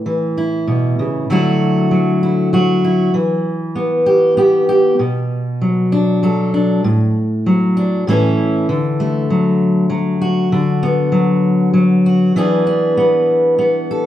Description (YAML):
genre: folk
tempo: 98 BPM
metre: 3/4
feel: straight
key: D major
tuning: A4 = 438 Hz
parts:
  - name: fingerpicked steel-string acoustic guitar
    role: solo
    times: 0.0-14.1 s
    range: A2 to A4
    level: -13 LUFS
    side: equal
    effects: none
room: wet large studio reverb, RT60 1.2 s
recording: band playing live in one room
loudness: -13 LUFS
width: side -12 dB against mid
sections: 0.0-8.7 A section; 8.7-14.1 B section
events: none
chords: 0.0 A; 1.3 Dadd9; 3.1 Em; 5.0 Bm; 6.8 D/A; 8.1 A; 8.7 Dadd9; 10.5 Bm/D; 12.4 E7